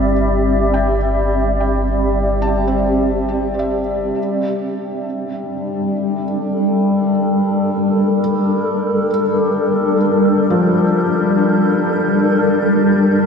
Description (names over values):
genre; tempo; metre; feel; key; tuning
ambient; 52 BPM; 3/4; straight; G dorian; A4 = 444 Hz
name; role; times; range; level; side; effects
granular cloud pad; sustained chords; 0.0-13.3 s; G3 to E5; -16 LUFS; equal; built-in reverb
felt-muted upright piano; arpeggios; 0.0-13.3 s; E3 to A5; -25 LUFS; left 2 dB; tape echo
warm sub bass; bass; 0.0-4.1 s; G1; -21 LUFS; equal; none
overtone-sweeping drone; drone; 0.0-13.3 s; G3; -20 LUFS; left 2 dB; chorus, built-in reverb
room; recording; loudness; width
wet lush hall reverb, RT60 2.5 s; dark, warm production; -14 LUFS; side -6 dB against mid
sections
0.0-4.2 A section; 4.2-13.3 B section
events
none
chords
0.0 Cadd9/G; 4.2 Gm